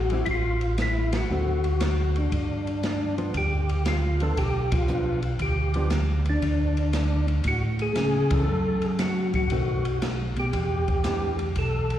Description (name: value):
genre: soul jazz organ trio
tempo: 117 BPM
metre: 4/4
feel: swing 68% on 8ths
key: unclear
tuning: A4 = 441 Hz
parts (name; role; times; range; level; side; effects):
- percussive tonewheel organ; melody; 0.0-12.0 s; D4 to A4; -28 LUFS; left 2 dB; slow rotary speaker, chorus vibrato, slapback echo
- mellow tonewheel organ; bass; 0.0-12.0 s; A1 to C#3; -25 LUFS; equal; overdrive, chorus vibrato, slow rotary speaker
- hollow-body jazz guitar; accompaniment; 0.1-11.4 s; D3 to G4; -34 LUFS; right 2 dB; slapback echo
- open jazz drum kit; drums; 0.1-12.0 s; hi-hat, kick drum, ride cymbal, snare drum; -30 LUFS; equal; none
room: light reverb, studio reverb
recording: live gig heard through the venue's PA, recital hall reverb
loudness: -22 LUFS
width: side -11 dB against mid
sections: 0.0-12.0 A section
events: band accent 1.0, 4.6, 8.2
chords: 0.3 F#mmaj7/A; 1.3 D7; 2.3 G7; 6.4 D5; 8.5 F#m; 9.5 B7b9; 10.5 Em7